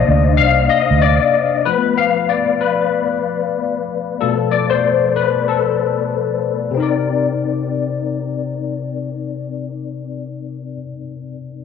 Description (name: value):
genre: R&B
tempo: 94 BPM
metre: 4/4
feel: swing 58% on 16ths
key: C dorian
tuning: A4 = 439 Hz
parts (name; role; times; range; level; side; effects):
- barky tine electric piano; accompaniment; 0.0-11.6 s; B2 to F5; -16 LUFS; left 7 dB; overdrive, ensemble chorus
- vintage muted fingered electric bass; bass; 0.1-1.2 s; C2 to D2; -14 LUFS; right 2 dB; none
room: light reverb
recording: 1960s-style stereo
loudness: -15 LUFS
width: side -6 dB against mid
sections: 0.0-6.8 A section; 6.8-9.3 B section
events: tine electric piano solo 0.0-6.8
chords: 0.0 Cm9; 1.7 Bm7b5; 6.8 Cm9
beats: 0.38 1.01 | 1.65 2.29 2.93 3.57 | 4.21 4.84 5.48 6.12 | 6.76 7.40 8.04 8.68